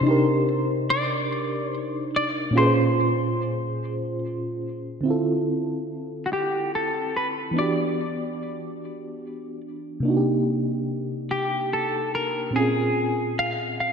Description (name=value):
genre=R&B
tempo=48 BPM (dotted quarters)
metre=6/8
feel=straight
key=unclear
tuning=A4 = 441 Hz
part: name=semi-hollow electric guitar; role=melody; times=0.0-13.9 s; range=F#4 to F5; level=-26 LUFS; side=left 1 dB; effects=wide subtle chorus, ping-pong delay
part: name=mellow FM electric piano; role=accompaniment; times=0.0-13.9 s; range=Bb2 to C5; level=-24 LUFS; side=right 1 dB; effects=chorus, tremolo
room=wet lush hall reverb, RT60 2.7 s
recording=dreamy mix soaked in reverb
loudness=-22 LUFS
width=side -6 dB against mid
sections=0.0-5.0 A section; 5.0-13.9 B section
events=none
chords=0.0 Cm9; 2.5 Bbm9; 5.0 Dm9; 7.5 Em9; 10.0 Cm9; 12.5 Bbm9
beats=| 0.04 1.29 | 2.54 3.79 | 5.04 6.29 | 7.54 8.79 | 10.04 11.29 | 12.54 13.79